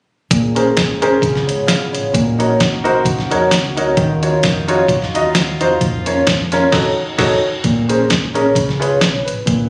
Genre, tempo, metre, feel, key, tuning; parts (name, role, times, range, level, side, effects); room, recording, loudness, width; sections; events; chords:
uptempo gospel; 131 BPM; 4/4; swing 56% on 8ths; Bb minor; A4 = 440 Hz
clear concert grand piano; accompaniment; 0.3-9.7 s; Bb2 to F5; -18 LUFS; equal
muted French horn section; sustained chords; 0.3-7.6 s; F3 to Ab4; -27 LUFS; equal
fingered electric bass; bass; 0.3-9.7 s; F1 to Ab2; -26 LUFS; equal
lo-fi sampler-style drum kit; drums; 0.3-9.6 s; crash cymbal, hi-hat, kick drum, snare drum; -20 LUFS; equal
light reverb; recorded on a phone in the room, studio reverb, compression; -15 LUFS; mono
0.3-7.6 A section; 7.6-9.7 B section
band accent 6.7-7.6
0.3 Bbm9; 1.2 Db7; 2.1 Gb6/Bb; 4.0 Ebm9; 5.8 Bbm/F; 6.7 F7b9b13; 7.6 Bbm9; 8.6 Db7